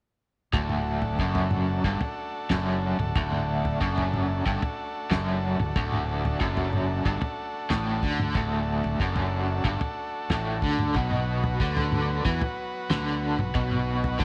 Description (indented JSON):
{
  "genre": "psychedelic rock",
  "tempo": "92 BPM",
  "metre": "4/4",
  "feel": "straight",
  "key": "D major",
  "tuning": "A4 = 440 Hz",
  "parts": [
    { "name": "combo organ", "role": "sustained chords", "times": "0.5-14.2 s", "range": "F#3 to B4", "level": "-36 LUFS", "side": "equal", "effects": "none" },
    { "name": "overdriven electric guitar", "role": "riff", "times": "0.5-14.2 s", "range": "D2 to E3", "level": "-30 LUFS", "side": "equal", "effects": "tremolo" },
    { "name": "fingered electric bass", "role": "bass", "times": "0.5-14.2 s", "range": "D1 to E2", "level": "-32 LUFS", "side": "equal", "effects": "none" },
    { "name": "cloth-damped thuddy drum kit", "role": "drums", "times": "0.5-14.2 s", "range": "kick drum, snare drum, toms", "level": "-32 LUFS", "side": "equal", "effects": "none" }
  ],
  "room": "light reverb, small room ambience",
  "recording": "none",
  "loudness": "-27 LUFS",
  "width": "mono",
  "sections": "0.5-14.2 A section",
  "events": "none",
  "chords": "0.5 D; 11.0 B5"
}